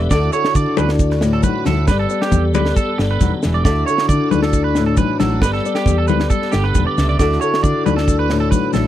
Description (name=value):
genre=highlife guitar band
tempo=136 BPM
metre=4/4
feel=straight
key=D major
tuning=A4 = 441 Hz
part: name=nylon-string guitar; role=accompaniment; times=0.0-8.9 s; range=A2 to E5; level=-20 LUFS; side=left 4 dB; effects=none
part: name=tonewheel organ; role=sustained chords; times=0.0-8.9 s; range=B3 to A4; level=-26 LUFS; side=right 2 dB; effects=chorus vibrato, slow rotary speaker
part: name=electric guitar at the edge of break-up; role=arpeggios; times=0.0-8.9 s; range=G4 to D5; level=-22 LUFS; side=right 6 dB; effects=wide subtle chorus, tape echo
part: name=hollow-body short-scale fingered electric bass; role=bass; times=0.0-8.9 s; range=E1 to D3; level=-18 LUFS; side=right 1 dB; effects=none
part: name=tight funk drum kit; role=drums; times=0.1-8.8 s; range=kick drum, snare drum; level=-19 LUFS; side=right 1 dB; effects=none
part: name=congas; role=percussion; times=0.1-8.8 s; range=none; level=-23 LUFS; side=left 10 dB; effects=none
part: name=maracas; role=percussion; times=0.1-8.8 s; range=none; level=-33 LUFS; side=left 18 dB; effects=none
room=little or no reverb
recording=dry, close 1970s-style studio recording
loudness=-14 LUFS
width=side -12 dB against mid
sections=0.0-8.9 A section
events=none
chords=0.1 Dadd9; 1.9 Gadd9; 3.7 Dadd9; 5.4 Gadd9; 7.2 Dadd9